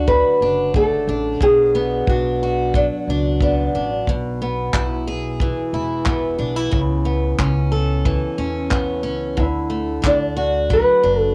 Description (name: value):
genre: acoustic pop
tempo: 90 BPM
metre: 4/4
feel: straight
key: A major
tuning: A4 = 438 Hz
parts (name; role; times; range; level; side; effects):
- nylon-string guitar; melody; 0.0-3.9, 9.4-11.3 s; D4 to B4; -20 LUFS; equal; none
- picked steel-string acoustic guitar; accompaniment; 0.0-11.3 s; B2 to A4; -25 LUFS; equal; cassette tape
- upright bass; bass; 0.0-11.3 s; E1 to E2; -26 LUFS; equal; none
- natural country drum kit; drums; 0.1-10.9 s; handclaps, kick drum; -23 LUFS; equal; cassette tape
room: moderate booth ambience, RT60 0.3 s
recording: home recording on cassette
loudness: -19 LUFS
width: mono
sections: 0.0-11.3 A section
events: none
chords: 0.0 D; 1.4 Bm; 4.1 E/B; 6.7 Aadd9/C#; 9.4 D